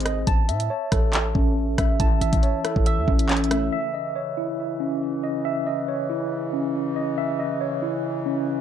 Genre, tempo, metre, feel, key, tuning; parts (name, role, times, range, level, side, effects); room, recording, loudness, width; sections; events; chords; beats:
hip hop, drill; 139 BPM; 4/4; half-time; C# minor; A4 = 440 Hz
soft electric-piano-like synth keys; accompaniment; 0.0-3.7 s; E3 to E5; -28 LUFS; equal; chorus, phaser, low-pass filter
mellow tine electric piano; arpeggios; 0.0-8.6 s; B#3 to A5; -25 LUFS; equal; medium stereo tremolo, low-pass filter, ping-pong delay
hard-hitting 808-style bass; bass; 0.0-3.7 s; G#1 to A2; -25 LUFS; equal
drill drum kit; drums; 0.0-3.6 s; handclaps, hi-hat, kick drum, rim click; -22 LUFS; equal; vintage 12-bit sampler grit
mellow woodwind section; sustained chords; 3.7-8.6 s; C#3 to E3; -33 LUFS; equal
digital ambience; -21 LUFS; side -9 dB against mid
0.0-3.7 A section; 3.7-8.6 B section
break 0.0-2.0
0.3 A; 3.7 C#madd9
| 0.27 0.70 1.13 1.57 | 2.00 2.43 2.86 3.29 | 3.72 4.16 4.59 5.02 | 5.45 5.88 6.31 6.75 | 7.18 7.61 8.04 8.47